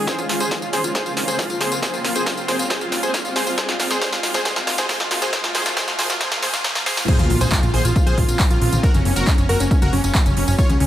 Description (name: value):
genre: uplifting trance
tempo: 137 BPM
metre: 4/4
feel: straight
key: Bb minor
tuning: A4 = 440 Hz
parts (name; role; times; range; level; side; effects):
- supersaw chords; melody; 0.0-10.9 s; Db4 to Db5; -23 LUFS; equal; sidechain pumping, tape echo
- shimmering ambient pad; sustained chords; 0.0-10.9 s; Db3 to Ab4; -28 LUFS; left 1 dB; chorus, built-in reverb, sidechain pumping
- plucky analog bass; bass; 0.0-10.9 s; Gb1 to F2; -24 LUFS; equal; none
- riser and impact; sound effects; 0.1-8.8 s; none; -30 LUFS; equal; none
- big-room dance drum kit; drums; 0.1-10.9 s; crash cymbal, handclaps, hi-hat, snare drum, tambourine, toms; -22 LUFS; equal; high-pass filter on snare, high-pass filter on hats, high-pass filter on toms, high-pass filter on perc, high-pass filter on cymbals, high-pass filter on room
- electronic kick drum; drums; 0.1-10.7 s; none; -19 LUFS; equal; high-pass filter on kick, high-pass filter on room
- plucky unison lead; second line; 7.1-10.9 s; Db4 to Db5; -28 LUFS; equal; cassette tape, sidechain pumping, tape echo
room: light reverb, digital ambience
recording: high-pass filter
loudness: -17 LUFS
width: side -12 dB against mid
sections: 0.0-7.1 A section; 7.1-10.9 B section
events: build-up 0.0-7.1; drum fill 0.0-7.1; filter sweep on supersaw synth 0.0-7.1; filter sweep 0.0-7.1; riser 0.1-7.1; drop 7.1-10.9; impact 7.1-8.8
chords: 0.1 Bbmadd9; 3.6 Ebmadd9; 7.1 Bbmadd9; 8.8 Gb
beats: | 0.07 0.51 0.95 1.39 | 1.83 2.26 2.70 3.14 | 3.58 4.02 4.45 4.89 | 5.33 5.77 6.21 6.64 | 7.08 7.52 7.96 8.40 | 8.83 9.27 9.71 10.15 | 10.59